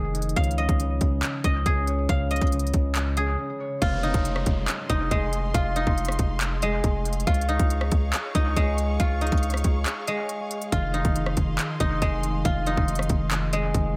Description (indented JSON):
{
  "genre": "hip hop, trap",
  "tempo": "139 BPM",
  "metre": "4/4",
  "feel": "half-time",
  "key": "F minor",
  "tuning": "A4 = 440 Hz",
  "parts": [
    { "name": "guzheng", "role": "melody", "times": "0.0-14.0 s", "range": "Ab3 to F5", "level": "-31 LUFS", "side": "equal", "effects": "analog delay" },
    { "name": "concert harp", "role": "accompaniment", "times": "0.0-6.1, 10.7-14.0 s", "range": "Db3 to Db5", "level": "-34 LUFS", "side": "equal", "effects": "none" },
    { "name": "distorted 808-style bass", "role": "bass", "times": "0.0-14.0 s", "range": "F1 to Db2", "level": "-29 LUFS", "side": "equal", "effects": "distortion" },
    { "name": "trap drum kit", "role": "drums", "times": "0.1-13.8 s", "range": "handclaps, hi-hat, kick drum, rim click", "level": "-28 LUFS", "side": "equal", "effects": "none" },
    { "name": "muted symphonic string section", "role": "sustained chords", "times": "3.8-14.0 s", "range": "Ab4 to Db6", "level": "-39 LUFS", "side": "equal", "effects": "none" },
    { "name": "downlifter", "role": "sound effects", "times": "3.9-7.3 s", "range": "none", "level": "-42 LUFS", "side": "equal", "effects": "none" }
  ],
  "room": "small room ambience",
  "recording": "echo-heavy mix",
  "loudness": "-25 LUFS",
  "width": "mono",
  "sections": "0.0-3.8 A section; 3.8-14.0 B section",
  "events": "break 3.4-3.8, 9.9-10.7",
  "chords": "0.4 Db; 3.8 Fm7; 7.3 Db; 10.7 Fm7",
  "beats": "| 0.36 0.80 1.23 1.66 | 2.09 2.52 2.95 3.39 | 3.82 4.25 4.68 5.11 | 5.54 5.98 6.41 6.84 | 7.27 7.70 8.13 8.57 | 9.00 9.43 9.86 10.29 | 10.72 11.16 11.59 12.02 | 12.45 12.88 13.31 13.75"
}